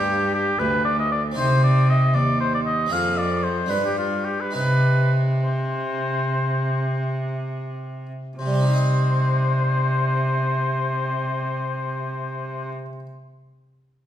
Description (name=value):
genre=classical, baroque-style sonata movement with continuo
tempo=55-78 BPM (dotted quarters)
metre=12/8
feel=rubato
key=C minor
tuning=A4 = 444 Hz
part: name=warm oboe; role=melody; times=0.0-12.7 s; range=F4 to F5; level=-24 LUFS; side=left 2 dB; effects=none
part: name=harpsichord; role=accompaniment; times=0.0-13.1 s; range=D2 to Eb5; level=-23 LUFS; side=equal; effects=none
part: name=rich cello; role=bass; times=0.0-12.7 s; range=D2 to C3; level=-26 LUFS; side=right 1 dB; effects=none
room=wet recital hall reverb, RT60 1.4 s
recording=recorded in a church or concert hall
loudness=-20 LUFS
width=side -11 dB against mid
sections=0.0-8.4 A section; 8.4-12.7 B section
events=slowing down 2.4-8.4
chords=0.0 G7; 1.4 Cm; 2.9 Fm; 3.7 G5; 4.5 Cm